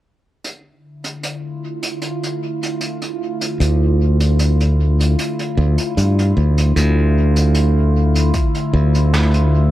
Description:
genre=ambient dub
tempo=76 BPM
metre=4/4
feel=straight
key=D minor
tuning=A4 = 441 Hz
part: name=warbly tape-like pad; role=sustained chords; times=1.0-9.7 s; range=D3 to F4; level=-22 LUFS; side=right 1 dB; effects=chorus, built-in reverb, phaser
part: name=vintage brush drum kit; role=drums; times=0.4-9.5 s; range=hi-hat, snare drum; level=-26 LUFS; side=right 1 dB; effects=dub echo
part: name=modern bright fingered electric bass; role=bass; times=3.6-9.7 s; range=D2 to G2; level=-13 LUFS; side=equal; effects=none
part: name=electronic kick drum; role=drums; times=8.3-8.5 s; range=none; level=-19 LUFS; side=equal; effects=overdrive
room=little or no reverb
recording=echo-heavy mix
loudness=-14 LUFS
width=side -14 dB against mid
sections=0.4-6.8 A section; 6.8-9.7 B section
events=none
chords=0.4 Dmadd9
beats=| 0.45 1.23 2.02 2.81 | 3.60 4.39 5.18 5.97 | 6.76 7.55 8.34 9.13

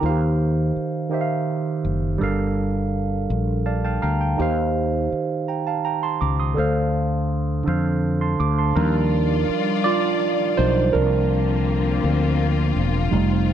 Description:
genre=R&B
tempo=55 BPM (dotted quarters)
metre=6/8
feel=straight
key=unclear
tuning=A4 = 440 Hz
part: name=barky tine electric piano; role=accompaniment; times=0.0-13.5 s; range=D3 to Eb6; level=-22 LUFS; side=right 4 dB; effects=overdrive, phaser
part: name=mellow fretless electric bass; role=bass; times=0.0-13.5 s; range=E1 to F2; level=-22 LUFS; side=left 2 dB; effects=none
part: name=rich studio string section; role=sustained chords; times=8.7-13.5 s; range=D3 to D5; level=-26 LUFS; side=left 7 dB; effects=none
room=light reverb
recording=dry, close 1970s-style studio recording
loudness=-19 LUFS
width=side -10 dB against mid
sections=0.0-8.7 A section; 8.7-13.5 B section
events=tine electric piano fill 3.3-4.4; tine electric piano solo 8.7-13.5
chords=0.0 Eb69; 2.2 Gm7; 4.4 Eb69; 6.6 Dm7; 8.7 Ebmaj9; 10.9 C9sus4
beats=| 0.01 1.11 | 2.20 3.29 | 4.38 5.47 | 6.56 7.65 | 8.74 9.83 | 10.92 12.02 | 13.11

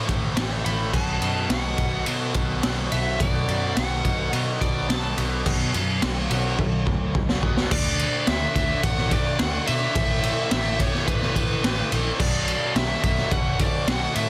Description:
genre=quiet-loud alternative rock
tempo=107 BPM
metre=4/4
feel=straight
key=unclear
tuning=A4 = 442 Hz
part: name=overdriven electric guitar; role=riff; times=0.0-14.3 s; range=A2 to D4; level=-33 LUFS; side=equal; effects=none
part: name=raw garage guitar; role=riff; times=0.0-7.7 s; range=A2 to B3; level=-35 LUFS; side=equal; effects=overdrive
part: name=vintage muted picked electric bass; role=bass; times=0.0-14.3 s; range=F#1 to B2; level=-31 LUFS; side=equal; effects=none
part: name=raw garage drum kit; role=drums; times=0.1-14.3 s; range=crash cymbal, kick drum, ride cymbal, snare drum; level=-26 LUFS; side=equal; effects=none
part: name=fuzz lead guitar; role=melody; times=0.7-14.3 s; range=B4 to B5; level=-31 LUFS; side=equal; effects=distortion, digital delay
room=light reverb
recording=dense, heavily limited modern master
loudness=-23 LUFS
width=mono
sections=0.0-5.5 A section; 5.5-7.7 B section; 7.7-14.3 C section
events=lead electric guitar solo 0.0-5.5; drum fill 6.6-7.7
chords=0.0 A5; 0.9 B5; 7.7 D5; 10.0 Asus2; 12.2 Bm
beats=0.38 | 0.94 1.51 2.07 2.64 | 3.20 3.77 4.33 4.89 | 5.46 6.02 6.58 7.15 | 7.71 8.27 8.83 9.39 | 9.96 10.52 11.08 11.64 | 12.20 12.76 13.32 13.88

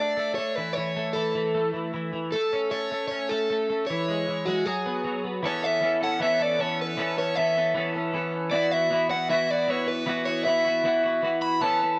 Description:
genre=rock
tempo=155 BPM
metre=4/4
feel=straight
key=A major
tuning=A4 = 440 Hz
part: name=overdriven semi-hollow guitar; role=melody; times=0.0-12.0 s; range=F#4 to B5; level=-28 LUFS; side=equal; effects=none
part: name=twelve-string electric guitar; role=riff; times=0.0-12.0 s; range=E3 to A4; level=-30 LUFS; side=equal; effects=double-tracked
room=light reverb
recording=rough home demo mix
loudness=-26 LUFS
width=mono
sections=0.0-5.4 A section; 5.4-12.0 B section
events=none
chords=0.0 D5; 0.6 A; 3.9 C#m; 4.7 F#sus24; 5.4 Aadd9; 8.5 Esus2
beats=0.38 | 0.77 1.16 1.55 1.94 | 2.33 2.71 3.10 3.49 | 3.88 4.27 4.66 5.04 | 5.43 5.82 6.21 6.59 | 6.98 7.36 7.75 8.14 | 8.52 8.91 9.29 9.68 | 10.07 10.46 10.84 11.23 | 11.62

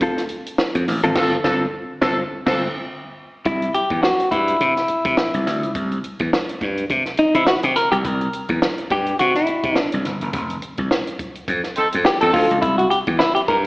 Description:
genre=funk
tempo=105 BPM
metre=4/4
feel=swing 56% on 16ths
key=C mixolydian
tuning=A4 = 440 Hz
part: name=semi-hollow electric guitar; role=accompaniment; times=0.0-13.6 s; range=C4 to C5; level=-18 LUFS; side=left 1 dB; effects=slapback echo
part: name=compact cocktail drum kit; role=drums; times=0.0-13.7 s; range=crash cymbal, hi-hat, kick drum, snare drum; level=-23 LUFS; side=equal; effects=slapback echo
part: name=slap bass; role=bass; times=0.8-13.7 s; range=F1 to C3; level=-21 LUFS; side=equal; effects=none
part: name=warm horn section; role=second line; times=1.2-2.6, 11.8-12.6 s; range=C4 to A4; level=-22 LUFS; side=right 1 dB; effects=slapback echo
room=light reverb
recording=live gig heard through the venue's PA, recital hall reverb, AM radio sound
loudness=-17 LUFS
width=side -23 dB against mid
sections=0.0-3.5 A section; 3.5-13.7 B section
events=band accent 1.2-3.5, 10.3-12.6; clean electric guitar solo 3.5-13.7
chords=0.0 G9sus4; 3.5 C7; 10.3 F5; 12.6 C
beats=0.01 0.58 | 1.16 1.73 2.31 2.88 | 3.46 4.03 4.60 5.18 | 5.75 6.33 6.90 7.47 | 8.05 8.62 9.19 9.77 | 10.34 10.91 11.48 12.06 | 12.63 13.20

